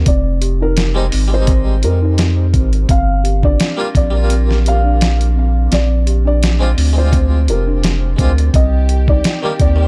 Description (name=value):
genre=trip hop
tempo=85 BPM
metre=4/4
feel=swing 54% on 16ths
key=unclear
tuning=A4 = 439 Hz
part: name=harpsichord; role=accompaniment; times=0.0-9.9 s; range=Eb3 to C5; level=-26 LUFS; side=equal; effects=tremolo
part: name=worn celesta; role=arpeggios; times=0.0-9.9 s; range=C4 to G4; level=-26 LUFS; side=equal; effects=tape echo
part: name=round analog bass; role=bass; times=0.0-9.9 s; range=F1 to F2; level=-16 LUFS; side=equal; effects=none
part: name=felt-muted upright piano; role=melody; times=0.1-9.9 s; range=Bb4 to F5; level=-25 LUFS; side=equal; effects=tape echo
part: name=dusty soul sampler-style drum kit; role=drums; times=0.1-9.8 s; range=hi-hat, kick drum, snare drum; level=-18 LUFS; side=equal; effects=none
part: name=warm symphonic string section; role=sustained chords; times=8.5-9.9 s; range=G4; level=-31 LUFS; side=equal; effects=none
room=little or no reverb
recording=dark, warm production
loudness=-14 LUFS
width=mono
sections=0.0-9.9 A section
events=none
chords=0.1 Fm7; 2.9 Gm7; 5.7 Bb7; 8.5 Cm7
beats=| 0.07 0.77 1.48 2.18 | 2.89 3.60 4.30 5.01 | 5.71 6.42 7.12 7.83 | 8.54 9.24